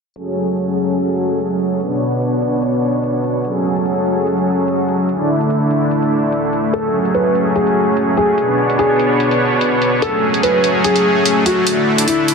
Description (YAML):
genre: heavy wobble dubstep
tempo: 146 BPM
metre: 4/4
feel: swing 55% on 16ths, half-time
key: F# minor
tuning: A4 = 439 Hz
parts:
  - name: supersaw pad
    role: sustained chords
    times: 0.2-12.3 s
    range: B2 to C#5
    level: -15 LUFS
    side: equal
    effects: none
  - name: electronic hi-hat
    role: drums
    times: 0.2-12.3 s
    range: none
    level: -22 LUFS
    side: right 1 dB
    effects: small room ambience
  - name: dark grand piano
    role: melody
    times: 6.7-12.3 s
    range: E4 to B4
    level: -16 LUFS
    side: left 1 dB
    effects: tape echo
room: moderate plate reverb, RT60 1.7 s, small room ambience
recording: dense, heavily limited modern master, low-pass filter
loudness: -14 LUFS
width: side -5 dB against mid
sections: 0.2-12.3 A section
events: filter sweep 0.2-12.3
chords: 0.2 F#madd9; 1.8 Bmadd9; 3.4 F#madd9; 5.1 Dsus2; 6.7 F#madd9; 8.4 Bmadd9; 10.0 F#madd9; 11.7 Dsus2